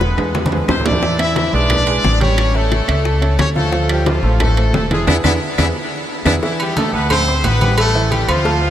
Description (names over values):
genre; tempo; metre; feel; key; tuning
latin, salsa; 178 BPM; 4/4; straight; unclear; A4 = 440 Hz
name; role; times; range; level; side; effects
bright horn section; melody; 0.0-8.7 s; E3 to E5; -19 LUFS; left 1 dB; analog delay
clear baby grand piano; accompaniment; 0.0-8.7 s; E3 to C6; -21 LUFS; right 2 dB; none
upright bass; bass; 0.0-8.7 s; E1 to E2; -18 LUFS; equal; none
bongos and cowbell; percussion; 0.0-8.6 s; none; -26 LUFS; left 6 dB; none
congas; percussion; 0.0-8.7 s; none; -23 LUFS; equal; none
claves; percussion; 0.2-8.5 s; none; -32 LUFS; left 6 dB; none
timbales and agogo bells; percussion; 0.2-8.5 s; none; -25 LUFS; right 5 dB; none
room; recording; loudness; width
moderate huge ambient reverb, RT60 6.9 s; dreamy mix soaked in reverb; -13 LUFS; side -11 dB against mid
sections
0.0-6.4 A section; 6.4-8.7 B section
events
drum fill 0.0-1.0, 5.4-6.4; band accent 5.1-6.4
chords
0.0 E; 1.0 E7; 2.4 A7; 3.7 Dm7; 5.1 E7; 6.4 A5; 7.1 D5; 7.8 Am7